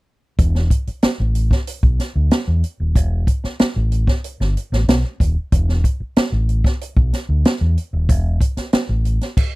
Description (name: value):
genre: funk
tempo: 94 BPM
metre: 4/4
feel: straight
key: unclear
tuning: A4 = 440 Hz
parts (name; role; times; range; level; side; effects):
- fingered electric bass; bass; 0.4-9.2 s; D#1 to E2; -17 LUFS; equal; none
- swinging big-band drum kit; drums; 0.4-9.5 s; crash cymbal, hi-hat, kick drum, snare drum; -17 LUFS; equal; none
room: little or no reverb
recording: dry, close 1970s-style studio recording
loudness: -16 LUFS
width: side -21 dB against mid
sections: 0.4-9.6 A section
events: none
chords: none